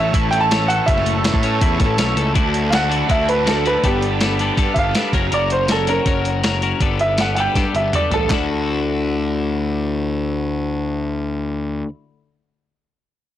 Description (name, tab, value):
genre	indie rock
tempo	161 BPM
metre	4/4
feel	straight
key	D major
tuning	A4 = 440 Hz
part	clear upright piano	melody	0.0-8.3 s	B3 to A5	-21 LUFS	right 2 dB	plate reverb, analog delay
part	combo organ	sustained chords	0.0-2.3 s	A4 to C#6	-29 LUFS	left 1 dB	plate reverb
part	raw garage guitar	riff	0.0-5.3 s	F#2 to A4	-24 LUFS	right 9 dB	overdrive, ensemble chorus, analog delay
part	twelve-string electric guitar	riff	0.0-11.9 s	A2 to A#4	-23 LUFS	left 8 dB	spring reverb
part	fuzz picked electric bass	bass	0.0-11.8 s	F#1 to A2	-22 LUFS	equal	overdrive
part	clean 12-bit digital drum machine	drums	0.1-8.4 s	handclaps, hi-hat, kick drum, snare drum, toms	-20 LUFS	equal	none
room	light reverb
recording	blown-out, overdriven recording, overdrive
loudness	-16 LUFS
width	side -12 dB against mid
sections	0.0-2.4 A section; 2.4-8.3 B section; 8.3-11.3 C section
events	upright piano solo 2.4-8.3; drum fill 7.6-8.3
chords	0.0 A; 2.4 Dadd9; 3.8 Gadd9; 5.1 F#; 6.8 Gadd9; 8.3 Dadd9